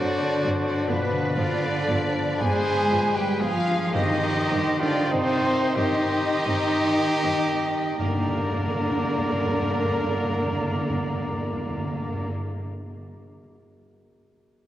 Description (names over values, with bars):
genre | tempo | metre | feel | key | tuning
classical, slow romantic movement for symphony orchestra | 25-46 BPM (dotted quarters) | 6/8 | rubato | G minor | A4 = 439 Hz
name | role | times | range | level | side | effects
rich symphonic violin section | melody | 0.0-12.3 s | Bb4 to Ab5 | -32 LUFS | left 1 dB | none
clear oboe | second line | 0.0-12.3 s | B4 to D5 | -35 LUFS | equal | none
silver concert flute | second line | 0.0-12.3 s | B4 to Bb5 | -32 LUFS | equal | none
warm symphonic violin section | second line | 0.0-12.3 s | Bb3 to Ab4 | -32 LUFS | left 2 dB | none
warm bassoon | accompaniment | 0.0-12.3 s | D3 to F#3 | -34 LUFS | right 1 dB | none
warm symphonic viola section | accompaniment | 0.0-12.3 s | D3 to D4 | -34 LUFS | right 1 dB | none
mellow French horn section | sustained chords | 0.0-12.3 s | Bb3 to Ab4 | -30 LUFS | left 2 dB | none
concert harp | arpeggios | 0.0-12.6 s | G2 to C6 | -35 LUFS | left 2 dB | none
bright trumpet | stabs | 0.0-12.3 s | D4 to C5 | -30 LUFS | right 1 dB | none
clear symphonic cello section | bass | 0.0-12.3 s | B2 to Bb3 | -30 LUFS | right 1 dB | none
warm studio double bass section | bass | 0.0-12.3 s | G2 | -33 LUFS | right 1 dB | none
timpani | percussion | 3.9-12.3 s | G2 | -31 LUFS | equal | none
room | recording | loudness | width
wet church reverb, RT60 2.9 s | worn, warbling old tape, cassette tape, warbly pitch drift | -22 LUFS | side -12 dB against mid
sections
0.0-8.0 A section; 8.0-12.5 B section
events
slowing down 0.0-8.0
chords
0.0 D7/G; 0.9 G7; 3.9 Cm/G; 8.0 Gm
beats
| 0.89 2.41 | 3.94 5.77 | 8.00 10.24